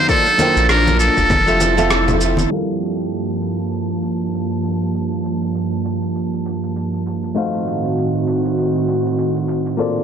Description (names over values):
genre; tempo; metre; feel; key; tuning
sunset chillout; 99 BPM; 4/4; swing 58% on 16ths; unclear; A4 = 438 Hz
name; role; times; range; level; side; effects
trumpet with metal mute; melody; 0.0-2.2 s; A4 to Bb4; -16 LUFS; equal; digital delay
airy breathy pad; sustained chords; 0.0-10.0 s; G2 to A5; -20 LUFS; right 2 dB; chorus
flamenco guitar; accompaniment; 0.1-10.0 s; F3 to A5; -23 LUFS; moving between left 5 dB and right 4 dB; auto-pan, digital delay
electronic kick drum; drums; 0.1-1.4 s; none; -21 LUFS; equal; none
electronic shaker and rim click; drums; 0.1-10.0 s; none; -24 LUFS; equal; low-pass filter on perc, soft clipping on snare, low-pass filter on snare, low-pass filter on room
congas; percussion; 0.4-2.5 s; none; -24 LUFS; left 3 dB; none
round analog bass; bass; 0.6-2.5 s; F1 to Bb1; -19 LUFS; equal; none
room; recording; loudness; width
moderate lush hall reverb, RT60 2.8 s; blown-out, overdriven recording, overdrive, low-pass filter; -16 LUFS; side -8 dB against mid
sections
0.0-2.5 A section; 2.5-10.0 B section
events
filter sweep on analog synth pad 2.5-10.0; filter sweep 2.5-10.0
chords
0.1 Bbmaj7; 1.3 Fmaj7; 2.5 Gm9; 7.4 F7b9/A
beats
| 0.09 0.69 1.30 1.91 | 2.51 3.12 3.73 4.33 | 4.94 5.54 6.15 6.75 | 7.36 7.97 8.57 9.18 | 9.79